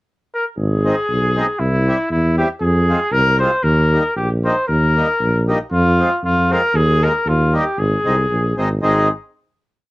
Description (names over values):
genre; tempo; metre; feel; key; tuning
alpine folk, alpine dance band; 117 BPM; 2/4; swing 54% on 8ths, rubato; Ab major; A4 = 440 Hz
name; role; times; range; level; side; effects
clear trumpet; melody; 0.3-9.1 s; E4 to C5; -18 LUFS; left 1 dB; none
mellow tuba; bass; 0.6-9.1 s; Ab1 to F2; -17 LUFS; equal; none
accordion; accompaniment; 0.8-9.1 s; G3 to F4; -20 LUFS; equal; cassette tape
room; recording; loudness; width
light reverb; home recording on cassette; -14 LUFS; side -19 dB against mid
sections
0.0-0.6 pickup bar; 0.6-8.8 A section; 8.8-9.9 final chord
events
none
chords
0.0 N.C.; 0.6 Ab; 1.6 C; 2.6 Fm; 3.6 Eb; 5.7 Fm; 6.7 Ebsus4; 7.3 Eb; 7.8 Ab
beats
0.06 | 0.57 1.08 | 1.59 2.10 | 2.60 3.12 | 3.63 4.15 | 4.68 5.20 | 5.71 6.23 | 6.74 7.26 | 7.77 8.29 | 8.82